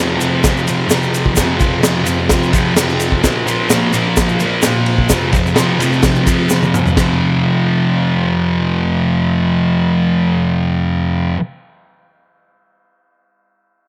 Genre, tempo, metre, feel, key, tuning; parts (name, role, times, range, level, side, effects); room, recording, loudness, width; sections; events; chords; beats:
garage rock duo or trio; 128 BPM; 4/4; straight; A4 = 440 Hz
fuzz guitar; riff; 0.0-11.4 s; F2 to Bb3; -16 LUFS; equal; distortion
crunchy breakbeat drum kit; drums; 0.2-7.1 s; kick drum, ride cymbal, snare drum, toms; -19 LUFS; equal
egg shaker; percussion; 0.2-7.2 s; -26 LUFS; equal
light reverb, small room ambience; -15 LUFS; mono
0.0-7.0 A section; 7.0-10.7 B section
drum fill 6.5-7.0
0.0 F5; 3.2 Bb5; 5.1 F5
0.44 0.91 | 1.37 1.84 2.31 2.77 | 3.24 3.71 4.17 4.64 | 5.11 5.57 6.04 6.51 | 6.97 7.44 7.91 8.38 | 8.85 9.31 9.78 10.24